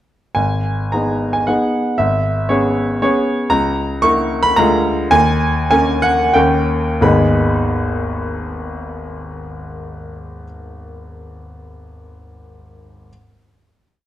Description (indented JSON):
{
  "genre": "classical, romantic triple-time dance for piano with dotted rhythms",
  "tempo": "86-123 BPM",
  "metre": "3/4",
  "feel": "rubato",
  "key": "G# minor",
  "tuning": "A4 = 435 Hz",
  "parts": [
    { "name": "clear baby grand piano", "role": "solo", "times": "0.3-13.1 s", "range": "G#1 to C#6", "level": "-15 LUFS", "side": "equal", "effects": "none" }
  ],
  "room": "moderate recital hall reverb, RT60 1.5 s",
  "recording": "dark, warm production",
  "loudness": "-14 LUFS",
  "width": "side -12 dB against mid",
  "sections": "0.4-7.0 A section; 7.0-11.0 final chord",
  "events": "slowing down 2.8-7.0",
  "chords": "0.4 G#m; 2.0 C#m7/G#; 3.5 A#dim/C#; 4.6 A#7/D; 5.1 D#7sus4; 7.0 G#m",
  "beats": "| 0.36 0.93 1.48 | 2.00 2.52 3.03 | 3.52 4.04 4.57 | 5.11 5.70 6.35 | 7.01 7.67 8.34 | 8.98 9.64 10.32"
}